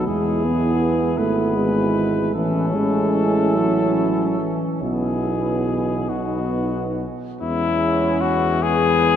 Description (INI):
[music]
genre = classical, hymn-like piece for brass band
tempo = 44-55 BPM (dotted quarters)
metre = 6/8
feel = rubato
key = E major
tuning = A4 = 440 Hz
[part]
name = warm cornet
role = melody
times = 0.0-9.2 s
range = E4 to B4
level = -24 LUFS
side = left 6 dB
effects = none
[part]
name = mellow French horn section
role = second line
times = 0.0-9.2 s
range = B3 to E4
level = -26 LUFS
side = right 6 dB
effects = none
[part]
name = mellow euphonium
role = accompaniment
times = 0.0-9.2 s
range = B2 to B3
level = -23 LUFS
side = right 2 dB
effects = none
[part]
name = warm trombone section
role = accompaniment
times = 0.0-9.2 s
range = B3 to C#4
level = -26 LUFS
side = left 3 dB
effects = none
[part]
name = mellow tuba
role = bass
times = 0.0-9.2 s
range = G#1 to E2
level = -25 LUFS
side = equal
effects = none
[sound]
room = wet cathedral reverb, RT60 6.3 s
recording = none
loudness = -18 LUFS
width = side -9 dB against mid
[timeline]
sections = 0.0-7.4 A section; 7.4-9.2 B section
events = none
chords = 0.1 E; 1.2 E/G#; 2.3 A; 4.8 E/B; 7.4 E